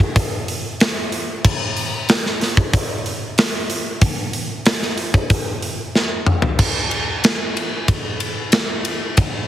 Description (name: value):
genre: rock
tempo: 93 BPM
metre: 4/4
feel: straight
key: none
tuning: none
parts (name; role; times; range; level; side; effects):
- tight metal drum kit; drums; 0.0-9.3 s; crash cymbal, hi-hat, kick drum, ride cymbal, snare drum, toms; -17 LUFS; equal; none
room: light reverb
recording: heavily compressed radio sound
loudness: -17 LUFS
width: side -12 dB against mid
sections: 0.0-6.6 A section; 6.6-9.5 B section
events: drum fill 6.0-6.6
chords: none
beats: 0.16 0.81 | 1.45 2.09 2.74 3.38 | 4.03 4.67 5.31 5.96 | 6.60 7.25 7.89 8.53 | 9.18